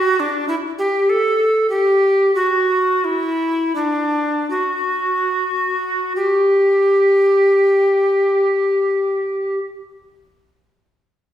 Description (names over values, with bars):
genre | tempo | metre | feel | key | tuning
classical, baroque-style fantasia for unaccompanied recorder | 35-52 BPM | 3/4 | rubato | unclear | A4 = 442 Hz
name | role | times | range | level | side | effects
tenor recorder | solo | 0.0-9.6 s | D4 to A4 | -15 LUFS | equal | none
room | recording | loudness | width
wet recital hall reverb, RT60 1.3 s | recorded in a church or concert hall | -15 LUFS | side -11 dB against mid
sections
0.0-6.2 A section; 6.2-11.2 B section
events
slowing down 0.0-6.2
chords
none